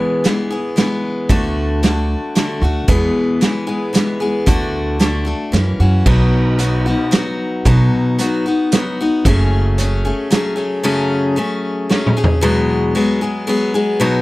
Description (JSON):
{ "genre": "folk rock and heartland rock", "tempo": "113 BPM", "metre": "3/4", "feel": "straight", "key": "E mixolydian, E major from 6.1 s", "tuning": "A4 = 440 Hz", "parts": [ { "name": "picked steel-string acoustic guitar", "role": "accompaniment", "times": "0.0-14.2 s", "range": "E2 to G#4", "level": "-17 LUFS", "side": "left 2 dB", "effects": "none" }, { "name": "vintage drum kit", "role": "drums", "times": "0.2-12.4 s", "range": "crash cymbal, hi-hat, kick drum, snare drum, toms", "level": "-17 LUFS", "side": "right 1 dB", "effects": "none" }, { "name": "upright bass", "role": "bass", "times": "1.3-10.1 s", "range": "F#1 to F#2", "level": "-16 LUFS", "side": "right 1 dB", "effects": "none" } ], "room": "light reverb", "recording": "none", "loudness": "-14 LUFS", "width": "side -19 dB against mid", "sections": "0.0-6.1 A section; 6.1-12.4 B section; 12.4-14.2 C section", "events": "drum fill 11.9-12.4", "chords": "0.0 E; 1.3 D; 2.9 E; 4.5 D; 5.5 F#7; 6.1 B; 9.2 F#madd9; 12.4 Eadd9" }